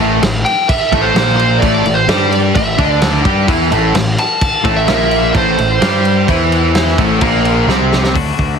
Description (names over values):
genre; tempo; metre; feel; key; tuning
quiet-loud alternative rock; 129 BPM; 4/4; straight; A minor; A4 = 437 Hz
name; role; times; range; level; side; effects
cranked stack guitar; riff; 0.0-8.1 s; A2 to G4; -18 LUFS; right 12 dB; overdrive
fuzz guitar; riff; 0.0-8.2 s; A2 to G4; -17 LUFS; left 13 dB; distortion
fuzz picked electric bass; bass; 0.0-8.5 s; A1 to G2; -17 LUFS; equal; overdrive
loose indie drum kit; drums; 0.2-8.5 s; crash cymbal, hi-hat, kick drum, snare drum; -17 LUFS; equal; none
dark smooth lead guitar; melody; 0.4-7.7 s; C5 to A5; -16 LUFS; right 2 dB; overdrive, slapback echo
twelve-string electric guitar; arpeggios; 8.1-8.6 s; D3 to F#4; -19 LUFS; left 12 dB; slapback echo
room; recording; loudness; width
light reverb, studio ambience; heavily compressed radio sound, multiband compression; -10 LUFS; side -6 dB against mid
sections
0.0-8.2 A section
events
drum fill 7.7-8.2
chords
0.0 Am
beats
0.22 | 0.69 1.15 1.62 2.08 | 2.55 3.02 3.48 3.95 | 4.42 4.88 5.35 5.82 | 6.28 6.75 7.22 7.69 | 8.16